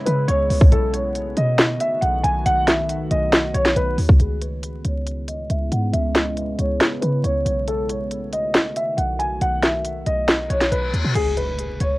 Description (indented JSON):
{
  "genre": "hip hop, trap",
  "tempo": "138 BPM",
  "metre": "4/4",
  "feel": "half-time",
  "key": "C# minor",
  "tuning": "A4 = 440 Hz",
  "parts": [
    { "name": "dark concert grand piano", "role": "melody", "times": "0.0-12.0 s", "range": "G#4 to G#5", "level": "-23 LUFS", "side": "equal", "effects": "low-pass filter, cassette tape, analog delay" },
    { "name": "deep dark ambient pad", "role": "sustained chords", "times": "0.0-11.1 s", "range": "C#3 to F#4", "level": "-30 LUFS", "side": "equal", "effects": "chorus, built-in reverb, low-pass filter" },
    { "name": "short 808-style bass", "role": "bass", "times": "0.1-12.0 s", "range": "B1 to C#3", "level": "-23 LUFS", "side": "equal", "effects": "none" },
    { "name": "trap drum kit", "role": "drums", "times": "0.1-11.9 s", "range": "crash cymbal, hi-hat, kick drum, snare drum", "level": "-17 LUFS", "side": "equal", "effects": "cassette tape" },
    { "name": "reverse cymbal and impact", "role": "sound effects", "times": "10.5-12.0 s", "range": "none", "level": "-30 LUFS", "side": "left 2 dB", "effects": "none" }
  ],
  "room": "light reverb",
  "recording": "home recording on cassette, vinyl crackle",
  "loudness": "-18 LUFS",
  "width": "side -20 dB against mid",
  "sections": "0.0-4.2 A section; 4.2-11.2 B section",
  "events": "filter sweep 4.2-11.2; reverse cymbal 10.5-11.2; impact 11.2-12.0",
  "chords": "0.0 C#m7; 0.7 B7; 4.2 C#m7; 7.7 B7; 11.2 C#5"
}